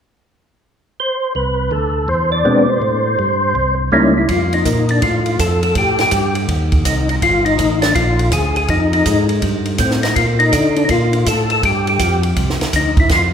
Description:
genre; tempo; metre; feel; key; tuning
soul jazz organ trio; 163 BPM; 4/4; swing 65% on 8ths; F major; A4 = 440 Hz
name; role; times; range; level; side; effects
percussive tonewheel organ; melody; 1.0-13.2 s; G3 to D5; -16 LUFS; left 1 dB; slow rotary speaker, chorus vibrato
tonewheel organ; bass; 1.4-13.3 s; G1 to D3; -18 LUFS; equal; slow rotary speaker
compact cocktail drum kit; drums; 4.3-13.2 s; hi-hat, kick drum, ride cymbal, snare drum; -20 LUFS; right 1 dB; none
room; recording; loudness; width
wet concert hall reverb, RT60 2.3 s; recorded in a church or concert hall; -13 LUFS; side -8 dB against mid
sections
0.0-1.3 A section; 1.3-4.3 B section; 4.3-13.3 C section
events
none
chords
0.0 N.C.; 1.3 Bm7; 2.1 E7b13; 2.8 Am7; 3.5 C7b9; 4.3 F; 5.8 Gsus2; 6.5 Cm; 7.2 Gm9; 8.7 F9; 10.2 Bbmaj7; 11.6 Fsus2; 12.4 Csus2

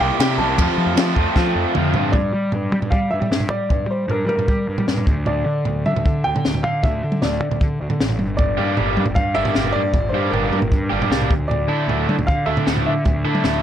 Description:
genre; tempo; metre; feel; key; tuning
indie rock; 154 BPM; 4/4; straight; G dorian; A4 = 440 Hz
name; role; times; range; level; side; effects
warm upright piano; melody; 0.0-13.6 s; Bb4 to A5; -24 LUFS; equal; digital delay
raw garage guitar; riff; 0.0-2.1, 8.6-13.6 s; F2 to A4; -21 LUFS; right 1 dB; overdrive
fuzz picked electric bass; bass; 0.0-13.6 s; G1 to G3; -22 LUFS; equal; overdrive
compact cocktail drum kit; drums; 0.2-13.5 s; kick drum, ride cymbal, snare drum, toms; -21 LUFS; equal; none
room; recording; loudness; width
light reverb; none; -17 LUFS; side -10 dB against mid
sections
0.0-2.1 A section; 2.1-13.6 B section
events
drum fill 1.4-2.1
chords
0.0 C5; 0.6 F; 2.1 Gm; 5.1 Dsus2; 8.4 Gm; 11.3 Dsus2

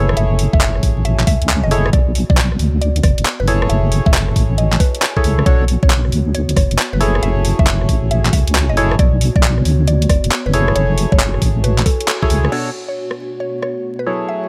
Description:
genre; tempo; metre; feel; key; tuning
UK garage, two-step garage; 136 BPM; 4/4; swing 66% on 16ths; B dorian; A4 = 440 Hz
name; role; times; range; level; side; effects
mallet-like synth pluck; melody; 0.0-14.5 s; F#4 to E5; -27 LUFS; equal; chorus, phaser, delay
percussive organ stab; stabs; 0.0-14.5 s; B2 to C#5; -24 LUFS; equal; subtle chorus, digital delay
deep soft wobble bass; bass; 0.0-12.5 s; F#1 to D2; -18 LUFS; equal; chorus, tube saturation
warbly tape-like pad; texture; 0.0-14.5 s; B3 to G#5; -31 LUFS; equal; chorus, built-in reverb, sidechain pumping
garage drum kit; drums; 0.1-13.7 s; crash cymbal, handclaps, hi-hat, rim click; -22 LUFS; equal; overdrive, studio ambience
electronic kick drum; drums; 0.5-12.3 s; none; -16 LUFS; equal; overdrive, studio ambience
soft string machine; sustained chords; 12.9-14.5 s; B2 to C#5; -36 LUFS; equal; phaser, ensemble chorus, sidechain pumping
room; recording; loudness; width
little or no reverb; vinyl crackle; -15 LUFS; mono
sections
0.0-12.5 A section; 12.5-14.5 B section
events
band accent 12.1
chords
0.0 F#m9; 1.9 Bmadd9; 3.5 F#m9; 5.5 Bm9; 7.0 F#m9; 9.0 Bmadd9; 10.5 F#m9; 12.5 Bm9

